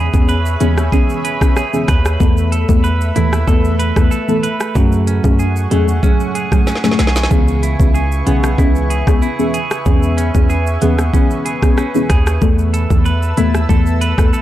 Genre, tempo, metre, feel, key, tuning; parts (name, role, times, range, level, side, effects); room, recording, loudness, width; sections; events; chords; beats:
dancehall; 94 BPM; 4/4; straight; A4 = 441 Hz
deep mellow chord stab; accompaniment; 0.0-14.4 s; E3 to A4; -18 LUFS; left 2 dB; chorus, phaser
lush unison pad; sustained chords; 0.0-14.4 s; A3 to E6; -25 LUFS; right 1 dB; chorus, sidechain pumping
clean electric guitar; arpeggios; 0.0-14.4 s; C#3 to B4; -23 LUFS; right 5 dB; tape echo
hard-hitting 808-style bass; bass; 0.0-14.3 s; B1 to F#2; -16 LUFS; equal
downlifter; sound effects; 0.0-2.2 s; barely audible
island pop drum kit; drums; 0.1-14.4 s; hi-hat, kick drum, rim click, shaker, snare drum; -15 LUFS; equal
little or no reverb; dark, warm production; -12 LUFS; side -13 dB against mid
0.0-14.4 A section
drum fill 6.7-7.3
0.0 E6; 2.2 Asus2; 4.8 F#madd9; 7.3 C#m7; 9.9 E6; 12.4 Asus2
0.29 0.93 1.56 | 2.20 2.84 3.48 4.12 | 4.76 5.39 6.03 6.67 | 7.31 7.95 8.59 9.22 | 9.86 10.50 11.14 11.78 | 12.42 13.05 13.69 14.33